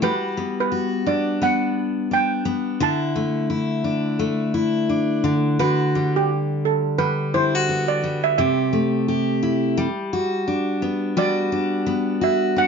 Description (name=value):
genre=pop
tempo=86 BPM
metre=4/4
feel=swing 60% on 16ths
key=G major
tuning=A4 = 441 Hz
part: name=steel pan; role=melody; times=0.0-12.7 s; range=G4 to A5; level=-22 LUFS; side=right 6 dB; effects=none
part: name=picked steel-string acoustic guitar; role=accompaniment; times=0.0-12.7 s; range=C3 to G4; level=-20 LUFS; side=left 2 dB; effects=none
room=light reverb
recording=nothing above 7.6 kHz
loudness=-19 LUFS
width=side -6 dB against mid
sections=0.0-11.2 A section; 11.2-12.7 B section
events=none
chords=0.0 Gmaj7; 2.8 Dsus2; 5.2 Gmaj7/D; 8.4 C6; 9.8 Gmaj7